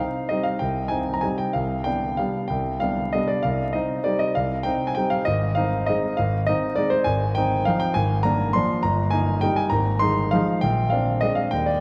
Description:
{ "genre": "classical, piano waltz", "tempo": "180-214 BPM", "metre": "3/4", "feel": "rubato", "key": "C minor", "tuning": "A4 = 440 Hz", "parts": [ { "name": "clear grand piano", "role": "solo", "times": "0.0-11.8 s", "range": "G1 to C6", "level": "-23 LUFS", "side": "equal", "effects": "none" } ], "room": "wet concert hall reverb, RT60 2.5 s", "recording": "dark, warm production, vinyl crackle", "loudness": "-23 LUFS", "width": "mono", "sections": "0.0-11.8 A section", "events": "none", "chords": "0.0 Cm; 1.5 G7/C; 3.4 Cm; 5.3 Ab; 7.1 Fm7/Ab; 8.0 Bb7/Ab; 8.8 Eb/G; 9.7 Fm7/Ab; 10.6 Bb9", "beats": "0.30 | 0.60 0.91 1.23 | 1.55 1.85 2.18 | 2.49 2.81 3.13 | 3.43 3.73 4.05 | 4.36 4.65 4.96 | 5.27 5.56 5.87 | 6.18 6.48 6.77 | 7.07 7.36 7.67 | 7.96 8.25 8.55 | 8.84 9.13 9.43 | 9.73 10.02 10.33 | 10.63 10.92 11.23 | 11.53" }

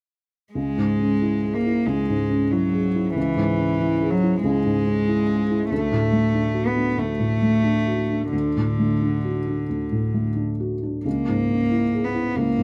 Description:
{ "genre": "neoclassical piano and strings", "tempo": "86-95 BPM", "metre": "4/4", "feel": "rubato", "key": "unclear", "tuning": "A4 = 441 Hz", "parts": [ { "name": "warm cello", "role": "second line", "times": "0.5-12.6 s", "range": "D3 to B3", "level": "-25 LUFS", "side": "equal", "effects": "none" }, { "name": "felt-muted upright piano", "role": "accompaniment", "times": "0.6-12.6 s", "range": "C#2 to G#4", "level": "-25 LUFS", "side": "equal", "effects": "none" } ], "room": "little or no reverb", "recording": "recorded outdoors, with no room sound", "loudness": "-22 LUFS", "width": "mono", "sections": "0.6-12.6 A section", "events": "none", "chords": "0.6 C#m; 5.7 D; 11.1 C#m", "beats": "| 0.56 1.22 1.87 2.52 | 3.16 3.80 4.44 5.08 | 5.71 6.35 6.98 7.64 | 8.32 9.02 9.70 10.38 | 11.05 11.70 12.35" }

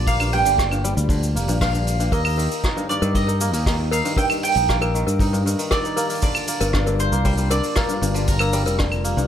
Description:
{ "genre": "folktronica", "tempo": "117 BPM", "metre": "4/4", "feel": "straight", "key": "unclear", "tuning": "A4 = 441 Hz", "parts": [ { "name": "mandolin", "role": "melody", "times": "0.0-9.3 s", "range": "Bb4 to G5", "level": "-25 LUFS", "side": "right 4 dB", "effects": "tape echo" }, { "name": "warm analog pad", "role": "sustained chords", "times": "0.0-9.3 s", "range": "Eb3 to D5", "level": "-32 LUFS", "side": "left 1 dB", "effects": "chorus" }, { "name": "kora", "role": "arpeggios", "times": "0.0-9.3 s", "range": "G2 to Eb4", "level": "-26 LUFS", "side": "left 1 dB", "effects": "none" }, { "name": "fingered electric bass", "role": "bass", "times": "0.0-9.3 s", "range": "F1 to G2", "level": "-22 LUFS", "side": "equal", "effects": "none" }, { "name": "kick drum", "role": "drums", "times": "0.1-8.9 s", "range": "none", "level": "-23 LUFS", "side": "equal", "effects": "none" }, { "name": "vintage brush drum kit", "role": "drums", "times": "0.1-9.3 s", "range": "cabasa, claves, hi-hat, rim click", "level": "-27 LUFS", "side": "right 1 dB", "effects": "none" }, { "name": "toy piano", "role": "second line", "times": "2.1-8.7 s", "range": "Bb4", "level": "-28 LUFS", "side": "left 2 dB", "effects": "tape echo" } ], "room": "light reverb, small room ambience", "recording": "none", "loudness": "-18 LUFS", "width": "side -9 dB against mid", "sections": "0.0-9.3 A section", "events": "none", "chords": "0.0 Bb6; 2.1 Eb; 6.2 Gm7", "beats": "| 0.07 0.59 1.10 1.61 | 2.12 2.64 3.15 3.66 | 4.18 4.69 5.20 5.71 | 6.23 6.74 7.25 7.76 | 8.28 8.79" }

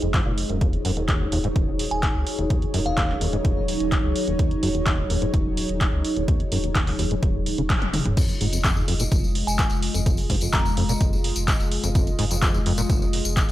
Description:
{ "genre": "acid house", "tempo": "127 BPM", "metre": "4/4", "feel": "straight", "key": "F phrygian", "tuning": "A4 = 442 Hz", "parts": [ { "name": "warm analog pad", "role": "sustained chords", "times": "0.0-13.5 s", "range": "Gb3 to Eb5", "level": "-30 LUFS", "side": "left 2 dB", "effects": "chorus, sidechain pumping" }, { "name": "deep acid bass", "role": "riff", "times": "0.0-13.1 s", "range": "Eb1 to Eb3", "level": "-27 LUFS", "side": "equal", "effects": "tube saturation, analog chorus, digital delay" }, { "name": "warm sub bass", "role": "bass", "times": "0.0-13.5 s", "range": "Eb1 to Db2", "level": "-28 LUFS", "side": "equal", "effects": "tube saturation, sidechain pumping" }, { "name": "punchy analog drum machine", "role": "drums", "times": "0.0-13.5 s", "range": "crash cymbal, handclaps, hi-hat, toms", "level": "-28 LUFS", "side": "equal", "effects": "small room reverb" }, { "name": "granular cloud pad", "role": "texture", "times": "0.0-8.2 s", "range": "Eb4 to Db5", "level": "-30 LUFS", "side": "right 2 dB", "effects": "built-in reverb, sidechain pumping" }, { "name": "electronic kick drum", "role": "drums", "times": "0.1-13.5 s", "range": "none", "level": "-23 LUFS", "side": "equal", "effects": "small room reverb" }, { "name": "glassy synth bell", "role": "melody", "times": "1.9-3.2, 9.5-11.0 s", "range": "F5 to Bb5", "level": "-31 LUFS", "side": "equal", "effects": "chorus, digital delay" }, { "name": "tambourine", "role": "percussion", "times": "8.2-13.5 s", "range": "none", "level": "-32 LUFS", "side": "left 4 dB", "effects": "none" } ], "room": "light reverb, digital ambience", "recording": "none", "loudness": "-20 LUFS", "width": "side -14 dB against mid", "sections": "0.0-8.2 A section; 8.2-13.5 B section", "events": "drum fill 7.7-8.2; band accent 7.7; drop 8.2-13.5", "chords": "0.0 Fm7; 0.6 Ebm7; 8.2 Fm7", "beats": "0.14 | 0.61 1.08 1.56 2.03 | 2.50 2.98 3.45 3.92 | 4.39 4.87 5.34 5.81 | 6.28 6.75 7.23 7.70 | 8.17 8.64 9.12 9.59 | 10.06 10.53 11.01 11.48 | 11.95 12.42 12.90 13.37" }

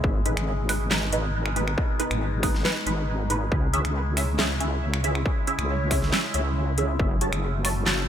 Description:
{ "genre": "deep dubstep", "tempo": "138 BPM", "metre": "4/4", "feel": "half-time", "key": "C# minor", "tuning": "A4 = 440 Hz", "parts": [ { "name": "overtone-sweeping drone", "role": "sustained chords", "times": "0.0-8.1 s", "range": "B2 to F#4", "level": "-31 LUFS", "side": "left 1 dB", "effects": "chorus, built-in reverb, phaser" }, { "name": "wobble bass", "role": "bass", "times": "0.0-8.1 s", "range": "F#1 to C#2", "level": "-26 LUFS", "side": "equal", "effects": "chorus" }, { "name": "electronic kick drum", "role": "drums", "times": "0.0-7.1 s", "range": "none", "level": "-25 LUFS", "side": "equal", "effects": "distortion" }, { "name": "filtered dub chord stab", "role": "stabs", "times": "0.3-7.9 s", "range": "G#3 to A5", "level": "-30 LUFS", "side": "right 2 dB", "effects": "phaser, ensemble chorus, dub echo" }, { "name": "dubstep drum kit", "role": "drums", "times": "0.3-8.0 s", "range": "finger snaps, handclaps, hi-hat, snare drum", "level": "-28 LUFS", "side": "equal", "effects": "none" }, { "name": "breathy flute-like synth lead", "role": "melody", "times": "5.7-6.0 s", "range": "C#5", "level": "-38 LUFS", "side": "left 2 dB", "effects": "none" } ], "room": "light reverb", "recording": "none", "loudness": "-22 LUFS", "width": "side -9 dB against mid", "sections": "0.0-8.1 A section", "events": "none", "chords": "0.0 G#m; 3.5 C#m; 7.0 F#m", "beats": "| 0.04 0.47 0.91 1.34 | 1.78 2.21 2.65 3.08 | 3.52 3.95 4.39 4.82 | 5.26 5.69 6.13 6.56 | 7.00 7.43 7.87" }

